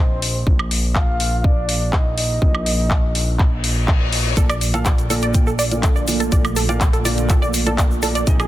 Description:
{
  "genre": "progressive house",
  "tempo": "123 BPM",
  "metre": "4/4",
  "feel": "straight",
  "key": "Bb major",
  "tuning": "A4 = 441 Hz",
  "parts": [
    { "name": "soft octave-layered synth lead", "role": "melody", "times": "0.0-3.8 s", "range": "C5 to F5", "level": "-26 LUFS", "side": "equal", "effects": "chorus, tremolo, digital delay" },
    { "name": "fat analog bass", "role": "bass", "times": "0.0-8.5 s", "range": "Bb1", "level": "-22 LUFS", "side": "equal", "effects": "tube saturation, sidechain pumping" },
    { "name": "house drum kit", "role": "drums", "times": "0.2-8.5 s", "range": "handclaps, hi-hat, woodblock", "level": "-24 LUFS", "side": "left 1 dB", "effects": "sidechain pumping on perc, sidechain pumping on hats" },
    { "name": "electronic kick drum", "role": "drums", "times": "0.5-8.4 s", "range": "none", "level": "-17 LUFS", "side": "equal", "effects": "none" },
    { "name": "reverse cymbal", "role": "sound effects", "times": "3.5-4.4 s", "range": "none", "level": "-26 LUFS", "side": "left 5 dB", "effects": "none" },
    { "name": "evolving wavetable pad", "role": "sustained chords", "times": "5.5-8.5 s", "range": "C3 to Eb5", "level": "-27 LUFS", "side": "right 4 dB", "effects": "chorus, built-in reverb, sidechain pumping" },
    { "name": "wide unison pluck", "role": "arpeggios", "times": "4.4-8.4 s", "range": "Ab4 to D5", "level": "-24 LUFS", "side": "right 2 dB", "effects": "sidechain pumping, digital delay" },
    { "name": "felt-muted upright piano", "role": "stabs", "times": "4.4-8.4 s", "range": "Bb2 to G5", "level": "-25 LUFS", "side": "right 1 dB", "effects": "sidechain pumping, digital delay" },
    { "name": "egg shaker", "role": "percussion", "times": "4.4-8.5 s", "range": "none", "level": "-32 LUFS", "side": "right 3 dB", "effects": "none" }
  ],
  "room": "little or no reverb",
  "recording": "dense, heavily limited modern master",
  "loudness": "-16 LUFS",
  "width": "side -14 dB against mid",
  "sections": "0.0-8.5 A section",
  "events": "reverse cymbal 3.5-4.4",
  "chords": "0.0 Bb; 4.4 Bbmaj7",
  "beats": "| 0.47 0.95 1.44 1.93 | 2.42 2.91 3.39 3.88 | 4.37 4.86 5.34 5.83 | 6.32 6.81 7.30 7.78 | 8.27"
}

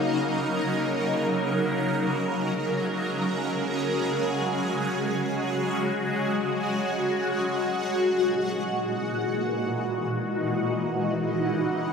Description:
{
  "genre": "ambient",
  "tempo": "free time",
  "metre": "none",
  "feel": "none",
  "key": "unclear",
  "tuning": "A4 = 440 Hz",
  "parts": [
    { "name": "shimmering ambient pad", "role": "sustained chords", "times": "0.0-11.9 s", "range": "A#2 to A#4", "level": "-24 LUFS", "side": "equal", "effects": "chorus, built-in reverb, phaser" },
    { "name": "tine electric piano", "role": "arpeggios", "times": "7.6-10.9 s", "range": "none", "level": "barely audible", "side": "none", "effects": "none" }
  ],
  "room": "wet plate reverb, RT60 2.5 s",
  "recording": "dreamy mix soaked in reverb",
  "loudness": "-24 LUFS",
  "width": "side -6 dB against mid",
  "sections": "0.0-7.6 A section; 7.6-11.9 B section",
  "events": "filter sweep on ambient pad 7.6-11.9",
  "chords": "0.0 D#m7; 7.6 F#13; 10.7 C#m11",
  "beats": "free time"
}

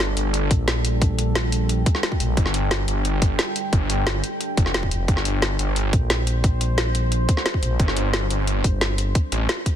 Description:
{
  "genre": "dark technical drum and bass",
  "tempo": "177 BPM",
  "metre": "4/4",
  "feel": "straight",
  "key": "G minor",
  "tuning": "A4 = 440 Hz",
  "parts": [
    { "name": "deep dark ambient pad", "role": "sustained chords", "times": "0.0-9.8 s", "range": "G3 to G5", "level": "-29 LUFS", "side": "equal", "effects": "chorus, built-in reverb, sidechain pumping" },
    { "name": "wide detuned saw bass", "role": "bass", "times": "0.0-9.5 s", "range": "F1 to A1", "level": "-23 LUFS", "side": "equal", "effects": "chorus, tube saturation, sidechain pumping" },
    { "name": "drum and bass drum kit", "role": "drums", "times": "0.0-9.7 s", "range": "hi-hat, snare drum", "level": "-25 LUFS", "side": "equal", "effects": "none" },
    { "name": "growling FM bass", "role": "bass", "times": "0.5-2.4, 4.9-9.1 s", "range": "F1 to Bb1", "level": "-22 LUFS", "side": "equal", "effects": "none" },
    { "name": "electronic kick drum", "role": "drums", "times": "0.5-9.7 s", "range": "none", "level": "-20 LUFS", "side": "equal", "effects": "overdrive" }
  ],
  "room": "little or no reverb",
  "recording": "dense, heavily limited modern master",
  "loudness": "-19 LUFS",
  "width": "side -10 dB against mid",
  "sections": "0.0-9.8 A section",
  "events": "none",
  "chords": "0.0 G5",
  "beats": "0.00 0.34 0.68 | 1.01 1.35 1.69 2.03 | 2.37 2.71 3.05 3.39 | 3.73 4.07 4.41 4.74 | 5.08 5.42 5.76 6.10 | 6.44 6.78 7.12 7.46 | 7.79 8.13 8.47 8.81 | 9.15 9.49"
}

